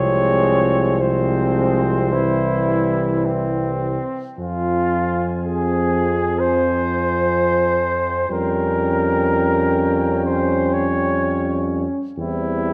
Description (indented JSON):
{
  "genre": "classical, hymn-like piece for brass band",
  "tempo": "49-64 BPM",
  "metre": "4/4",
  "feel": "rubato",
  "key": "F minor",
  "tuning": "A4 = 441 Hz",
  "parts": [
    { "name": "mellow cornet", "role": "melody", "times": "0.0-12.7 s", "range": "C5 to Ab5", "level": "-29 LUFS", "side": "equal", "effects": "none" },
    { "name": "warm flugelhorn", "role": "second line", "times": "0.0-12.7 s", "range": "C4 to Db5", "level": "-24 LUFS", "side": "equal", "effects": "none" },
    { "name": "warm trombone", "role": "accompaniment", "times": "0.0-12.7 s", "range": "E3 to G3", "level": "-27 LUFS", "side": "equal", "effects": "none" },
    { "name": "warm trombone section", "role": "accompaniment", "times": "0.0-12.7 s", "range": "G3 to Db4", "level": "-28 LUFS", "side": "equal", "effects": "none" },
    { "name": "clear tuba", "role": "bass", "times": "0.0-12.7 s", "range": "C2 to F2", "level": "-25 LUFS", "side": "equal", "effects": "none" }
  ],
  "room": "moderate scoring stage reverb, RT60 1.8 s",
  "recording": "dark, warm production",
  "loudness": "-19 LUFS",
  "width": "mono",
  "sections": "0.0-4.4 A section; 4.4-12.7 B section",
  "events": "none",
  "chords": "0.0 Fm/C; 2.1 C; 4.4 Fm; 8.3 Gm7b5/F; 12.2 C/E"
}